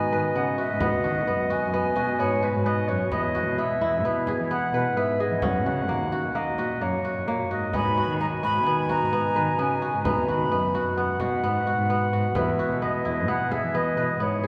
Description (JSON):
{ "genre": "contemporary instrumental, chamber music in an uneven meter", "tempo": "130 BPM", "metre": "5/4", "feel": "straight", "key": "unclear", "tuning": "A4 = 439 Hz", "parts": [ { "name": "hollow concert flute", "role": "melody", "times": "0.0-2.9, 7.7-11.0 s", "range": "E5 to B5", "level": "-31 LUFS", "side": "equal", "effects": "none" }, { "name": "warm clarinet", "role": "second line", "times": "0.0-14.5 s", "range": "B4 to G#5", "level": "-31 LUFS", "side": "equal", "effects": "none" }, { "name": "warm woodwind section", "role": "sustained chords", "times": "0.0-14.5 s", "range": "B2 to F#4", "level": "-39 LUFS", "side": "equal", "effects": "none" }, { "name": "kora", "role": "arpeggios", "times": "0.0-14.5 s", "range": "A#3 to B4", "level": "-30 LUFS", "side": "equal", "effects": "none" }, { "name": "muted cello", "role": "bass", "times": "0.1-14.4 s", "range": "D#2 to E3", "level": "-31 LUFS", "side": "equal", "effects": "none" }, { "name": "frame drum", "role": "percussion", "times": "0.8-13.7 s", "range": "none", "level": "-39 LUFS", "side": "equal", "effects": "none" } ], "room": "wet church reverb, RT60 3.4 s", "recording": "recorded in a church or concert hall", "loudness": "-25 LUFS", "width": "mono", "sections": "0.0-14.5 A section", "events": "none", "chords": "0.0 G#m7; 3.1 Emaj7; 5.4 F#6; 7.7 G#m7; 12.4 Emaj7" }